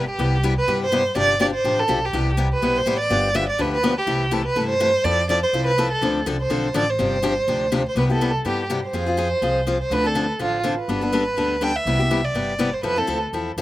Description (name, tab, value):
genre	acoustic string swing (jazz manouche)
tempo	247 BPM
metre	4/4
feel	swing 54% on 8ths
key	C major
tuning	A4 = 440 Hz
part	warm violin	melody	0.0-13.2 s	F4 to G5	-22 LUFS	right 2 dB	slapback echo
part	picked steel-string acoustic guitar	accompaniment	0.0-13.6 s	C3 to A4	-23 LUFS	left 3 dB	slapback echo
part	upright bass	bass	0.0-13.6 s	G1 to G2	-26 LUFS	equal	none
room	little or no reverb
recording	recorded outdoors, with no room sound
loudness	-18 LUFS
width	side -15 dB against mid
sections	0.2-8.0 A section; 8.0-13.6 B section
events	none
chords	0.2 Cmaj7; 1.2 G7sus4; 2.1 Cmaj7; 3.1 G7; 4.1 C6; 5.0 Fmaj7; 6.0 Dm7; 7.0 G7sus4; 8.0 Cmaj7; 8.9 Fm; 9.9 Dm7; 10.9 Gadd9; 11.9 Cmaj7; 12.8 Fmaj7